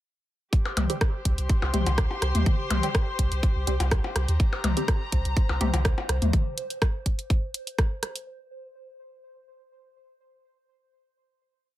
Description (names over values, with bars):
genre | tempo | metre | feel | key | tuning
minimal techno | 124 BPM | 4/4 | straight | unclear | A4 = 439 Hz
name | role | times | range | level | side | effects
electronic kick drum | drums | 0.5-7.9 s | none | -24 LUFS | equal | none
garage drum kit | drums | 0.5-8.2 s | hi-hat, rim click | -30 LUFS | right 1 dB | none
dark chamber string section | texture | 0.5-6.3 s | G4 to C6 | -34 LUFS | left 2 dB | sidechain pumping
electronic percussion blips and toms | percussion | 0.7-6.3 s | none | -30 LUFS | left 3 dB | overdrive, dub echo
punchy sub bass | bass | 0.8-6.3 s | C2 to Eb2 | -26 LUFS | equal | sidechain pumping
filtered dub chord stab | stabs | 0.9-5.7 s | G3 to G4 | -34 LUFS | right 2 dB | phaser, wide subtle chorus, dub echo
pulsing gated texture | texture | 5.0-8.3 s | C5 | -41 LUFS | right 1 dB | chorus, built-in reverb, sidechain pumping
room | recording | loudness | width
little or no reverb | none | -23 LUFS | side -14 dB against mid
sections
0.5-8.3 drop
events
drop 0.5-8.3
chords
0.5 C5